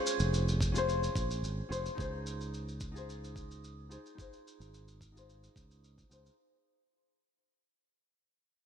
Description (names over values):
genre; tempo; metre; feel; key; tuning
sunset chillout; 109 BPM; 4/4; straight; unclear; A4 = 440 Hz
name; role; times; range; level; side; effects
nylon-string guitar; accompaniment; 0.0-6.4 s; Db4 to C5; -38 LUFS; moving between left 4 dB and right 3 dB; auto-pan, low-pass filter, digital delay
shaker; drums; 0.1-6.4 s; none; -42 LUFS; right 1 dB; none
fingered electric bass; bass; 0.2-6.3 s; F1 to Db2; -35 LUFS; equal; none
electronic kick drum; drums; 0.6-6.1 s; none; -37 LUFS; equal; overdrive
room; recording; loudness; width
moderate lush hall reverb, RT60 2.0 s; bright 1980s-style digital production; -32 LUFS; side -8 dB against mid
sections
0.0-6.4 A section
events
fade-out 0.0-6.4; filter sweep on fingered electric bass 0.0-6.4; filter sweep on nylon-string guitar 0.0-6.4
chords
0.0 Bbm9; 2.0 Dbmaj7